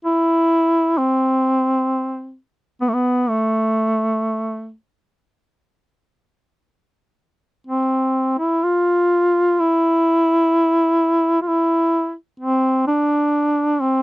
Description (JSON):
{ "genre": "caucasian folk", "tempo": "free time", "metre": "none", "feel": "none", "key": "unclear", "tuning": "A4 = 441 Hz", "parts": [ { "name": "mellow duduk", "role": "solo", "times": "0.1-14.0 s", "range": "A3 to F4", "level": "-16 LUFS", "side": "equal", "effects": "none" } ], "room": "little or no reverb", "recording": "dry, close 1970s-style studio recording", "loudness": "-16 LUFS", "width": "side -20 dB against mid", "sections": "0.0-14.0 A section", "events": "none", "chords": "none" }